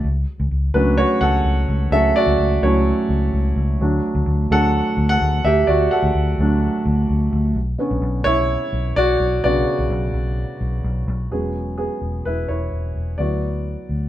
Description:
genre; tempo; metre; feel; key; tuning
piano-driven pop; 128 BPM; 4/4; straight; D major; A4 = 438 Hz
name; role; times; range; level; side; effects
warm grand piano; accompaniment; 0.0-14.1 s; C#3 to F#5; -19 LUFS; right 1 dB; none
vintage muted fingered electric bass; bass; 0.0-14.1 s; E1 to D2; -20 LUFS; equal; none
room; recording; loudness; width
moderate studio reverb, RT60 0.8 s; band playing live in one room; -17 LUFS; side -13 dB against mid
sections
0.0-11.3 A section; 11.3-14.1 B section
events
grand piano solo 0.0-11.3, 11.3-14.1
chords
0.0 F#m/C#; 3.8 D; 7.6 Bmadd9; 11.3 E6; 13.2 D6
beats
| 0.04 0.51 0.98 1.45 | 1.92 2.39 2.86 3.33 | 3.80 4.27 4.74 5.21 | 5.67 6.14 6.62 7.08 | 7.55 8.02 8.49 8.96 | 9.43 9.90 10.37 10.84 | 11.31 11.78 12.25 12.72 | 13.19 13.66

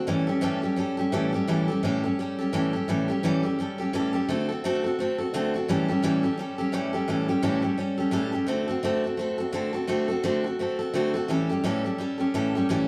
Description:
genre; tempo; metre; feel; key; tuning
rock; 171 BPM; 4/4; swing 59% on 8ths; A mixolydian; A4 = 439 Hz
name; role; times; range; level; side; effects
picked steel-string acoustic guitar; solo; 0.0-12.9 s; A2 to A4; -26 LUFS; equal; none
room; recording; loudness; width
moderate large studio reverb, RT60 1.2 s; band playing live in one room; -26 LUFS; mono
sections
0.0-2.9 A section; 2.9-12.9 B section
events
none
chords
0.1 A7; 4.3 D7; 5.7 A7; 8.5 D7; 11.3 A7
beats
| 0.08 0.43 0.78 1.13 | 1.48 1.83 2.18 2.54 | 2.88 3.23 3.59 3.94 | 4.29 4.64 4.99 5.34 | 5.69 6.04 6.39 6.74 | 7.09 7.44 7.79 8.14 | 8.49 8.84 9.19 9.54 | 9.89 10.24 10.59 10.94 | 11.29 11.64 11.99 12.34 | 12.69

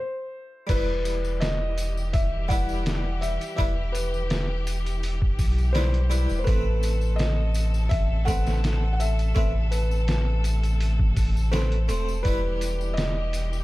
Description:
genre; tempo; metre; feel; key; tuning
trip hop; 83 BPM; 4/4; straight; E harmonic minor; A4 = 440 Hz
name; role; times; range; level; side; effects
felt-muted upright piano; melody; 0.0-13.6 s; B4 to F#5; -32 LUFS; left 1 dB; tape echo
harpsichord; accompaniment; 0.7-13.6 s; G3 to C5; -33 LUFS; equal; tremolo
bright studio string section; sustained chords; 0.7-13.6 s; B2 to A4; -36 LUFS; left 2 dB; vintage 12-bit sampler grit
soft dub sub bass; bass; 0.7-13.6 s; E1 to B1; -24 LUFS; equal; none
trip hop sampler-style drum kit; drums; 0.7-13.5 s; crash cymbal, hi-hat, kick drum, snare drum; -26 LUFS; equal; none
tambourine; percussion; 0.7-13.6 s; none; -43 LUFS; left 5 dB; none
room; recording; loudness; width
studio reverb; dark, warm production; -22 LUFS; side -18 dB against mid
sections
0.7-13.6 A section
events
break 0.0-0.7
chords
0.0 N.C.; 0.7 Em; 6.5 Amadd9; 12.3 Em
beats
| 0.69 1.41 2.14 2.86 | 3.58 4.31 5.03 5.75 | 6.47 7.20 7.92 8.64 | 9.37 10.09 10.81 11.54 | 12.26 12.98

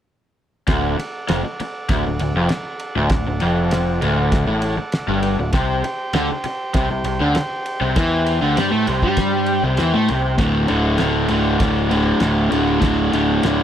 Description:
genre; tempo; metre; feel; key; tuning
garage rock duo or trio; 99 BPM; 4/4; straight; D mixolydian; A4 = 436 Hz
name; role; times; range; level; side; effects
combo organ; sustained chords; 0.7-13.6 s; F#4 to G5; -28 LUFS; right 2 dB; none
raw garage guitar; riff; 0.7-13.6 s; D2 to A3; -18 LUFS; equal; overdrive
growling picked electric bass; bass; 0.7-13.6 s; D1 to A2; -24 LUFS; equal; overdrive
cloth-damped thuddy drum kit; drums; 0.7-13.6 s; kick drum, ride cymbal, snare drum; -25 LUFS; equal; none
room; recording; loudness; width
light reverb; none; -16 LUFS; side -10 dB against mid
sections
0.7-10.4 A section; 10.4-13.6 B section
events
none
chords
0.7 D; 5.5 C5; 10.4 D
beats
| 0.69 1.30 1.91 2.51 | 3.12 3.73 4.33 4.94 | 5.55 6.15 6.76 7.37 | 7.97 8.58 9.19 9.79 | 10.40 11.01 11.62 12.22 | 12.83 13.44

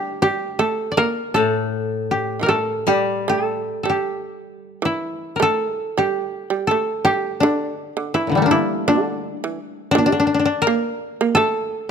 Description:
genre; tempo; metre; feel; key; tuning
japanese traditional, Japanese chamber music; 75-85 BPM; 4/4; rubato; G kumoi; A4 = 441 Hz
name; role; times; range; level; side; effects
koto; melody; 0.0-11.9 s; Bb2 to D5; -20 LUFS; left 2 dB; none
shamisen; second line; 0.0-11.9 s; D3 to Bb3; -23 LUFS; right 7 dB; none
koto; accompaniment; 1.4-5.2 s; A2 to G3; -24 LUFS; left 5 dB; none
room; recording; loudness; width
light reverb; close, detailed microphones; -18 LUFS; side -7 dB against mid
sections
0.0-4.1 A section; 4.1-11.9 B section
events
none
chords
none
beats
0.24 | 0.99 1.74 2.49 3.28 | 4.08 4.85 5.59 6.33 | 7.05 7.77 8.49 9.21 | 9.93 10.65 11.36

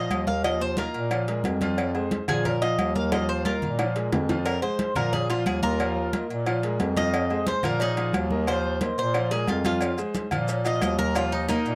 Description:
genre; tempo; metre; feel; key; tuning
latin, salsa; 179 BPM; 4/4; straight; unclear; A4 = 441 Hz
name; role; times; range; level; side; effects
Cuban tres; melody; 0.0-11.8 s; Bb3 to F5; -30 LUFS; equal; none
bright grand piano; accompaniment; 0.0-11.8 s; F3 to F5; -33 LUFS; equal; none
clear bass clarinet; bass; 0.0-11.8 s; Eb2 to Bb2; -30 LUFS; equal; none
agogo bells and timbales; percussion; 0.1-11.8 s; none; -37 LUFS; equal; none
claves; percussion; 0.1-11.3 s; none; -43 LUFS; equal; none
congas; percussion; 0.1-11.7 s; none; -33 LUFS; equal; none
cowbell and bongos; percussion; 0.1-11.7 s; none; -36 LUFS; equal; none
maracas; percussion; 9.8-11.8 s; none; -44 LUFS; equal; none
room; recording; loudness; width
little or no reverb; dry, close 1970s-style studio recording; -25 LUFS; mono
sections
0.0-11.8 A section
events
Cuban tres solo 0.0-11.8; drum fill 3.1-4.5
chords
0.0 Ebsus2; 1.1 Bb5; 1.8 Fm; 2.5 Ebsus2; 3.8 Bb5; 4.5 Fm; 5.1 Ebsus2; 6.5 Bb5; 7.1 Fm; 7.8 Ebsus2; 9.1 Bb5; 9.8 Fm; 10.5 Ebsus2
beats
0.11 | 0.45 0.78 1.11 1.45 | 1.78 2.12 2.45 2.79 | 3.12 3.46 3.79 4.13 | 4.46 4.80 5.13 5.46 | 5.80 6.13 6.47 6.80 | 7.14 7.47 7.81 8.14 | 8.48 8.81 9.15 9.48 | 9.82 10.15 10.49 10.82 | 11.16 11.49

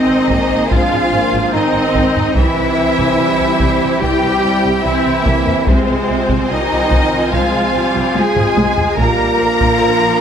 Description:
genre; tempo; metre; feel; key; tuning
cinematic, epic orchestral film score; 72 BPM; 4/4; straight; unclear; A4 = 439 Hz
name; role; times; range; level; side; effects
rich symphonic violin section; melody; 0.0-10.2 s; C5 to Bb5; -24 LUFS; left 3 dB; none
clear symphonic violin section; second line; 0.0-10.2 s; C5 to Bb5; -22 LUFS; left 2 dB; none
rich symphonic viola section; accompaniment; 0.0-10.2 s; E3 to C4; -21 LUFS; equal; none
clear trombone section; sustained chords; 0.0-10.2 s; C3 to Bb3; -21 LUFS; right 4 dB; none
dark French horn section; sustained chords; 0.0-10.2 s; Ab3 to F4; -21 LUFS; left 3 dB; none
dark symphonic string section; sustained chords; 0.0-10.2 s; C4 to Ab5; -22 LUFS; left 1 dB; none
warm symphonic cello section; bass; 0.0-10.2 s; C4 to Bb4; -18 LUFS; right 1 dB; none
rich symphonic double bass section; bass; 0.1-10.1 s; Ab1 to C2; -23 LUFS; right 2 dB; none
taiko ensemble; drums; 0.3-10.2 s; none; -19 LUFS; equal; none
room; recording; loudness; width
moderate scoring stage reverb, RT60 1.7 s; none; -12 LUFS; side -8 dB against mid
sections
0.0-10.2 A section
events
drum fill 8.2-9.0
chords
0.0 Ab; 2.4 C; 5.7 Fm/C; 9.0 Bb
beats
0.71 1.54 | 2.36 3.19 4.02 4.85 | 5.67 6.50 7.33 8.16 | 8.99 9.82

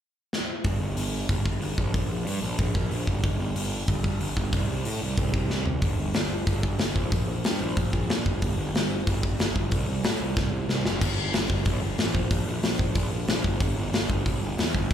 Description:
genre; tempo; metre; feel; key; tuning
punk rock; 185 BPM; 4/4; straight; unclear; A4 = 439 Hz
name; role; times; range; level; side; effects
big rock drum kit; drums; 0.3-14.9 s; crash cymbal, hi-hat, kick drum, snare drum, toms; -26 LUFS; equal; none
fuzz picked electric bass; bass; 0.6-14.9 s; F#1 to A2; -28 LUFS; equal; overdrive
room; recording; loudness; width
little or no reverb; live gig heard through the venue's PA, club reverb; -24 LUFS; side -10 dB against mid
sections
0.6-11.0 A section; 11.0-14.9 B section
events
drum fill 0.3-0.6, 5.5-5.8, 10.4-11.0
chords
none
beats
0.00 0.32 | 0.64 0.97 1.29 1.61 | 1.94 2.26 2.59 2.91 | 3.23 3.56 3.88 4.21 | 4.53 4.85 5.18 5.50 | 5.83 6.15 6.47 6.80 | 7.12 7.45 7.77 8.10 | 8.42 8.74 9.07 9.39 | 9.71 10.04 10.36 10.69 | 11.01 11.34 11.66 11.98 | 12.31 12.63 12.95 13.28 | 13.60 13.93 14.25 14.57 | 14.90

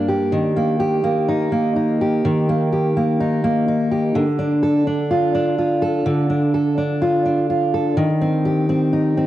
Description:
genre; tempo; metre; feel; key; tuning
pop; 63 BPM; 4/4; straight; unclear; A4 = 440 Hz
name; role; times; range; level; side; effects
fingerpicked steel-string acoustic guitar; solo; 0.0-9.3 s; G2 to A4; -16 LUFS; equal; cassette tape
room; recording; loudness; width
moderate lush hall reverb, RT60 2.2 s; home recording on cassette; -16 LUFS; side -13 dB against mid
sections
0.0-9.3 A section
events
none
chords
0.3 Eb; 4.1 Dm; 8.0 Cm/Eb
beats
| 0.32 1.28 2.24 3.19 | 4.15 5.10 6.05 7.01 | 7.96 8.92

